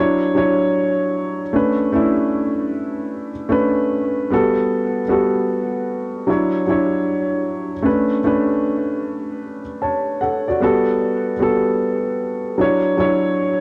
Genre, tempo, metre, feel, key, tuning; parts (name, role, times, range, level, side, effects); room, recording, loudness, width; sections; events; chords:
hip hop; 76 BPM; 4/4; swing 64% on 16ths; B minor; A4 = 440 Hz
dark upright piano; solo; 0.0-13.6 s; F#3 to A5; -19 LUFS; equal; tape echo
moderate studio reverb, RT60 0.6 s; worn, warbling old tape, cassette tape, warbly pitch drift; -19 LUFS; mono
0.0-13.6 A section
0.0 Dmaj9; 1.5 Bm9; 4.3 Gmaj9; 6.3 Dmaj9; 7.9 Bm9; 10.6 Gmaj9; 12.6 Dmaj9